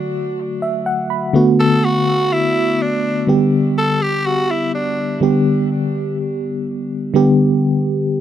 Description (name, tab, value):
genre	pop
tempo	124 BPM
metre	4/4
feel	straight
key	unclear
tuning	A4 = 440 Hz
part	FM electric piano with auto-pan	accompaniment	0.0-8.2 s	D3 to B5	-15 LUFS	equal	none
part	raspy tenor saxophone	melody	1.6-5.2 s	D4 to A4	-20 LUFS	equal	tape echo
room	moderate booth ambience, RT60 0.2 s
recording	dry, close 1970s-style studio recording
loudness	-14 LUFS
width	side -10 dB against mid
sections	0.0-5.2 A section; 5.2-8.2 B section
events	tenor saxophone solo 0.0-5.2; FM electric piano fill 0.4-1.3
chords	0.0 D; 1.3 Bm7; 3.3 G